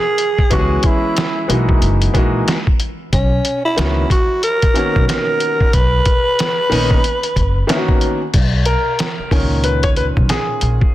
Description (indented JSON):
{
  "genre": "hip hop, jazz-hop",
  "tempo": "92 BPM",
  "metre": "4/4",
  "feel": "swing 60% on 16ths",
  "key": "B major",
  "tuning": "A4 = 440 Hz",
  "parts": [
    { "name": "growling tenor saxophone", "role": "melody", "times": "0.0-7.7 s", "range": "C#4 to B4", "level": "-18 LUFS", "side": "right 1 dB", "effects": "tape echo" },
    { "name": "lo-fi sampler-style drum kit", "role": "drums", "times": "0.2-10.9 s", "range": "crash cymbal, hi-hat, kick drum, snare drum", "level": "-17 LUFS", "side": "equal", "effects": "none" },
    { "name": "clear concert grand piano", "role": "accompaniment", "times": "0.5-10.9 s", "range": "A#2 to C#5", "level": "-20 LUFS", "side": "left 1 dB", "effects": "none" },
    { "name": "upright bass", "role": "bass", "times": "0.5-10.8 s", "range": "F#1 to C#2", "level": "-18 LUFS", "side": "equal", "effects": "none" }
  ],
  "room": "light reverb",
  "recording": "dense, heavily limited modern master",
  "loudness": "-13 LUFS",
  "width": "side -14 dB against mid",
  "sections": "0.0-8.3 A section; 8.3-10.9 B section",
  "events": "grand piano solo 8.3-10.9",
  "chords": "0.0 N.C.; 0.5 C#m7; 1.8 F#13; 3.1 Bmaj9"
}